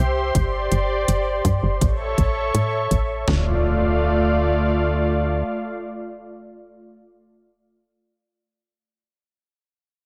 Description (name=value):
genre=synthwave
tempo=82 BPM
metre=4/4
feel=straight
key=unclear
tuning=A4 = 441 Hz
part: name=warm analog pad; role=sustained chords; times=0.0-7.0 s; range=A3 to C#6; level=-25 LUFS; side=equal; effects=chorus, sidechain pumping
part: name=tight sequencer bass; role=bass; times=0.0-5.4 s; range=G1 to A2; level=-24 LUFS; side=equal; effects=none
part: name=electronic hi-hat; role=drums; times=0.3-3.1 s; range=none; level=-31 LUFS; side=equal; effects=overdrive
part: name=gated 80s digital drum machine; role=drums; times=0.3-3.4 s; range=kick drum, snare drum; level=-25 LUFS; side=equal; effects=gated reverb, gated reverb snare, overdrive
part: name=impact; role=sound effects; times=3.3-7.7 s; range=none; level=-33 LUFS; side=equal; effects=none
room=moderate lush hall reverb, RT60 1.5 s, digital ambience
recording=dreamy mix soaked in reverb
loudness=-21 LUFS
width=mono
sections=0.0-3.3 A section; 3.3-6.2 B section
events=filter sweep on analog synth bass 0.0-3.3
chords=0.3 Gsus4; 1.8 A; 3.3 Dm